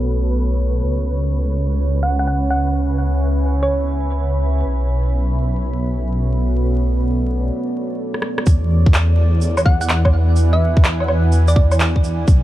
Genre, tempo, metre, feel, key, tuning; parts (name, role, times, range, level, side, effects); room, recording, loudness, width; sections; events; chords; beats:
future garage; 126 BPM; 4/4; swing 66% on 16ths; A4 = 439 Hz
deep dark ambient pad; sustained chords; 0.0-12.4 s; B3 to B5; -24 LUFS; right 1 dB; chorus, built-in reverb, sidechain pumping
swelling detuned saw bass; bass; 0.0-12.4 s; B1 to E2; -17 LUFS; equal; tube saturation
flickering grainy texture; texture; 0.0-7.5 s; B4; -34 LUFS; right 3 dB; built-in reverb
thumb-piano-like synth pluck; melody; 2.0-4.3, 9.7-11.7 s; C#5 to F#5; -25 LUFS; right 1 dB; chorus, digital delay
electronic rim click, shaker, handclaps and woodblock; drums; 8.1-12.4 s; -22 LUFS; right 1 dB; low-pass filter on snare, small room ambience, low-pass filter on perc
electronic kick drum; drums; 8.5-12.4 s; -13 LUFS; equal; small room ambience
little or no reverb; dark, warm production, vinyl crackle, low-pass filter; -15 LUFS; side -14 dB against mid
0.0-8.5 A section; 8.5-12.4 B section
filter sweep 0.0-8.5; break 7.5-8.5; drum fill 8.1-8.5
0.0 Bm7; 0.8 C#m7; 4.7 Bm7; 8.5 E7
0.37 | 0.84 1.32 1.79 2.27 | 2.75 3.22 3.70 4.18 | 4.65 5.13 5.60 6.08 | 6.56 7.03 7.51 7.99 | 8.46 8.94 9.41 9.89 | 10.37 10.84 11.32 11.79 | 12.27